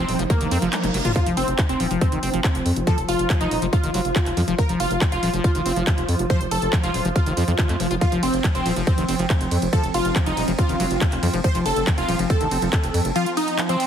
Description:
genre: psychedelic trance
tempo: 140 BPM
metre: 4/4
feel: straight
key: F major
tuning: A4 = 440 Hz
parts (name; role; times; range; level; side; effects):
- supersaw stab; melody; 0.0-13.9 s; Bb3 to C5; -25 LUFS; right 1 dB; phaser, sidechain pumping, dub echo
- swarming drone; sustained chords; 0.0-13.9 s; F3 to F4; -29 LUFS; right 2 dB; built-in reverb, sidechain pumping
- liquid acid bass; riff; 0.0-13.8 s; Eb3 to F4; -27 LUFS; moving between left 6 dB and right 3 dB; chorus, auto-pan, cassette tape, sidechain pumping, dub echo
- round analog bass; bass; 0.0-13.1 s; Eb1 to F2; -26 LUFS; equal; none
- techno drum kit; drums; 0.1-13.9 s; handclaps, hi-hat, ride cymbal, toms; -28 LUFS; equal; none
- electronic kick drum; drums; 0.3-12.8 s; none; -20 LUFS; equal; none
- reverse cymbal; sound effects; 0.5-1.2 s; none; -33 LUFS; right 5 dB; none
room: light reverb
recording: heavily compressed radio sound, multiband compression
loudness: -18 LUFS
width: side -9 dB against mid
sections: 0.0-13.9 A section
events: reverse cymbal 0.5-1.2; kick drops out 0.7-1.2; drum fill 0.7-1.2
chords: 0.0 F5

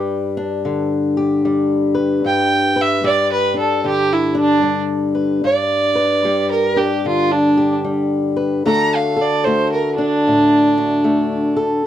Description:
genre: acoustic country blues, solo or duo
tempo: 75 BPM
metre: 4/4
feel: swing 64% on 8ths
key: G major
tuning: A4 = 441 Hz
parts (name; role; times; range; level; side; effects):
- fingerpicked old ladder-braced acoustic guitar; accompaniment; 0.0-11.9 s; G2 to B4; -18 LUFS; left 2 dB; none
- warm fiddle; melody; 2.3-11.5 s; D4 to Bb5; -16 LUFS; right 2 dB; none
room: moderate booth ambience, RT60 0.2 s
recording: dry, close 1970s-style studio recording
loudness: -14 LUFS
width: side -11 dB against mid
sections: 0.0-11.9 A section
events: none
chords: 0.0 G; 8.7 D

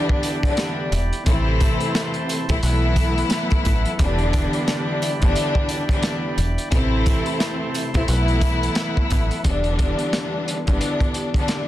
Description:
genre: hip hop, boom-bap hip-hop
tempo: 88 BPM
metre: 4/4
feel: swing 60% on 16ths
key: E minor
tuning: A4 = 440 Hz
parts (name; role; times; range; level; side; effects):
- warm studio string section; accompaniment; 0.0-11.7 s; C3 to E4; -23 LUFS; left 1 dB; cassette tape
- percussive tonewheel organ; sustained chords; 0.0-9.4 s; E4 to C6; -31 LUFS; right 2 dB; overdrive, wide subtle chorus
- crunchy breakbeat drum kit; drums; 0.1-11.7 s; hi-hat, kick drum, rim click, snare drum; -22 LUFS; equal; none
- sleigh bells; percussion; 0.2-9.3 s; none; -39 LUFS; right 9 dB; none
- deep dub fingered electric bass; bass; 0.9-10.8 s; E1 to B1; -22 LUFS; equal; none
room: small room ambience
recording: dense, heavily limited modern master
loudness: -18 LUFS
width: side -14 dB against mid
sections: 0.0-9.4 A section; 9.4-11.7 B section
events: none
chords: 0.0 Em7; 1.3 Am; 2.6 B7sus4; 4.0 Em7; 6.7 Am; 8.1 B7sus4; 9.4 Em7

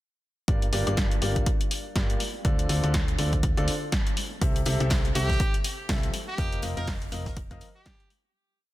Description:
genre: piano house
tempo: 122 BPM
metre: 4/4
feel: swing 58% on 16ths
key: G minor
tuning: A4 = 441 Hz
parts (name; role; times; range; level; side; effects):
- clear grand piano; riff; 0.5-7.7 s; G2 to E5; -32 LUFS; left 1 dB; sidechain pumping, tape echo
- solid FM bass; bass; 0.5-7.6 s; F1 to D2; -29 LUFS; equal; sidechain pumping
- electronic kick drum; drums; 0.5-8.0 s; none; -27 LUFS; equal; none
- punchy analog drum machine; drums; 0.5-8.2 s; hi-hat, snare drum; -32 LUFS; left 1 dB; none
- huge arena drum kit; drums; 4.4-8.2 s; hi-hat, snare drum; -44 LUFS; left 4 dB; none
- brilliant trumpet; melody; 5.2-8.1 s; G4 to Bb4; -34 LUFS; right 1 dB; tape echo
room: light reverb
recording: dense, heavily limited modern master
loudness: -24 LUFS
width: side -16 dB against mid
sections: 0.5-8.3 groove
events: fade-out 5.7-8.3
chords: 0.5 Gm7; 2.2 Dm7; 4.2 C6; 6.1 F7sus4

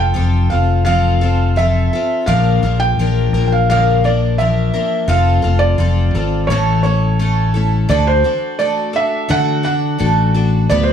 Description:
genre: folk rock and heartland rock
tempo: 85 BPM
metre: 4/4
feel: straight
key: unclear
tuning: A4 = 440 Hz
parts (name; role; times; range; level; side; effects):
- felt-muted upright piano; melody; 0.0-10.9 s; C5 to G5; -18 LUFS; right 3 dB; none
- picked twelve-string acoustic guitar; accompaniment; 0.0-10.9 s; A2 to B4; -19 LUFS; left 4 dB; none
- fingered electric bass; bass; 0.0-10.9 s; F1 to D3; -15 LUFS; left 1 dB; none
room: light reverb, small room ambience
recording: none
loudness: -13 LUFS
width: side -8 dB against mid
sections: 0.0-7.9 A section; 7.9-10.9 B section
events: none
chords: 0.0 F; 2.3 Bb; 5.1 F; 6.5 A; 7.9 D

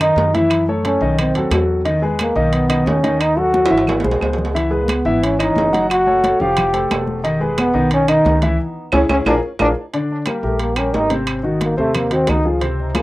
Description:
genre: Afro-Cuban jazz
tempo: 178 BPM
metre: 4/4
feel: straight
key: unclear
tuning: A4 = 440 Hz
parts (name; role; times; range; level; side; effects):
- breathy trombone; melody; 0.0-13.0 s; A3 to G4; -18 LUFS; equal; cassette tape, tape echo
- warm grand piano; accompaniment; 0.0-13.0 s; C3 to F#5; -19 LUFS; left 1 dB; cassette tape
- upright bass; bass; 0.0-13.0 s; E1 to F#2; -23 LUFS; equal; none
- claves; percussion; 0.0-13.0 s; none; -27 LUFS; right 5 dB; none
- congas; percussion; 0.0-13.0 s; none; -26 LUFS; left 1 dB; none
- timbales; percussion; 0.0-13.0 s; none; -25 LUFS; right 4 dB; none
room: wet booth ambience, RT60 0.2 s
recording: home recording on cassette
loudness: -14 LUFS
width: side -18 dB against mid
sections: 0.0-9.9 A section; 9.9-13.0 B section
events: drum fill 3.5-4.6, 9.3-9.9; band accent 8.6-9.9; trombone solo 9.9-13.0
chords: 0.0 B (rootless); 0.5 F#m7; 1.2 B7b9; 1.9 Emaj7; 3.2 D#dim; 3.9 G#aug; 4.6 C#m9; 5.9 F#m; 6.6 Fadd9; 7.2 Emaj7; 8.6 C#m; 9.3 A#7; 9.9 Abmaj9#11; 11.3 Ab7

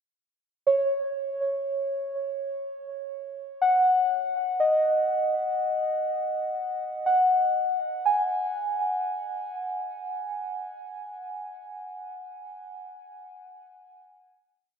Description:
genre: ambient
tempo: 61 BPM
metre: 4/4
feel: straight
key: unclear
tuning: A4 = 438 Hz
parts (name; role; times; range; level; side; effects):
- muted felt-like synth keys; solo; 0.7-14.5 s; C#5 to G#5; -25 LUFS; equal; chorus, diffuse ambient delay
room: wet concert hall reverb, RT60 2.4 s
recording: none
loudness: -24 LUFS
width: side -6 dB against mid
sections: 0.2-8.0 A section; 8.0-12.0 final note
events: none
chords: 0.2 C#sus4; 4.1 D#m; 8.0 N.C.

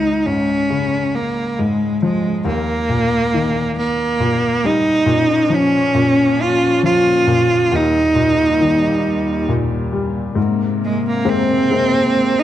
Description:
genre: acoustic folk-pop ballad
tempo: 45 BPM (dotted quarters)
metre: 6/8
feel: straight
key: Ab major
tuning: A4 = 444 Hz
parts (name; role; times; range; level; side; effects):
- bright cello; melody; 0.0-12.4 s; Ab3 to F4; -16 LUFS; right 2 dB; none
- warm upright piano; accompaniment; 0.0-12.4 s; Db2 to C4; -20 LUFS; left 3 dB; none
- warm chamber string section; sustained chords; 5.1-12.4 s; Eb2 to Db4; -22 LUFS; left 1 dB; none
room: moderate scoring stage reverb, RT60 1.7 s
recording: dark, warm production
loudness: -14 LUFS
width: side -12 dB against mid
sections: 0.0-10.4 A section; 10.4-12.4 B section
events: none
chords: 0.0 Db; 2.4 Eb; 5.1 Bbm; 7.7 Eb; 10.4 Abadd9

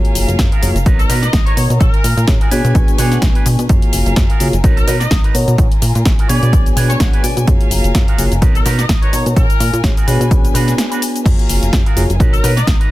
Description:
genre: filtered disco house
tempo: 127 BPM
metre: 4/4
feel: swing 56% on 16ths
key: unclear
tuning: A4 = 437 Hz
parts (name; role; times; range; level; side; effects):
- mellow reed electric piano; accompaniment; 0.0-12.5 s; A#3 to C#6; -21 LUFS; left 1 dB; fast tremolo, phaser, sidechain pumping
- dark studio violin section; sustained chords; 0.0-12.9 s; B3 to A#5; -26 LUFS; left 3 dB; sidechain pumping
- plucky analog bass; bass; 0.0-12.8 s; F#1 to B2; -16 LUFS; equal; sidechain pumping
- house drum kit; drums; 0.0-12.9 s; crash cymbal, hi-hat, shaker, snare drum; -21 LUFS; left 1 dB; sidechain pumping on hats, studio reverb, sidechain pumping on cymbals, sidechain pumping on perc
- electric guitar with an envelope filter; riff; 0.1-12.9 s; D4 to G#5; -25 LUFS; right 6 dB; sidechain pumping
- electronic kick drum; drums; 0.4-12.8 s; none; -13 LUFS; equal; studio reverb
- bright horn section; melody; 1.0-12.7 s; A#4 to D#5; -24 LUFS; left 1 dB; sidechain pumping, dub echo
room: little or no reverb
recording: dense, heavily limited modern master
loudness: -11 LUFS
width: side -16 dB against mid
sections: 0.0-12.9 A section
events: clean electric guitar fill 2.8-3.7, 6.5-7.5; break 10.8-11.3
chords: 0.0 F#maj9; 0.9 Bmaj7; 1.8 F#maj9/A#; 2.5 Bm6; 3.7 F#maj9; 4.6 Bmaj7; 5.6 F#maj9/A#; 6.3 Bm6; 7.5 F#maj9; 8.4 Bmaj7; 9.4 F#maj9/A#; 10.1 Bm6; 11.3 F#maj9; 12.2 Bmaj7

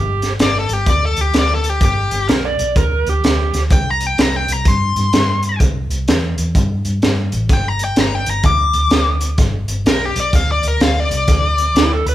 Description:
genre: electric blues shuffle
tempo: 127 BPM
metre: 4/4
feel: swing 64% on 8ths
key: unclear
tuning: A4 = 442 Hz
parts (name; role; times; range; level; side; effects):
- overdriven slide guitar; second line; 0.0-3.6, 11.8-12.1 s; E4 to D5; -20 LUFS; right 4 dB; none
- vintage muted fingered electric bass; bass; 0.0-12.1 s; G1 to G2; -19 LUFS; equal; none
- crunchy breakbeat drum kit; drums; 0.2-12.1 s; hi-hat, kick drum, snare drum; -16 LUFS; equal; none
- smooth overdriven lead guitar; melody; 0.4-11.9 s; G4 to D6; -18 LUFS; left 3 dB; none
room: light reverb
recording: band playing live in one room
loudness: -13 LUFS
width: side -13 dB against mid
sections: 0.0-12.1 A section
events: none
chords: 0.0 G5; 3.7 C5; 7.5 G; 11.3 D5

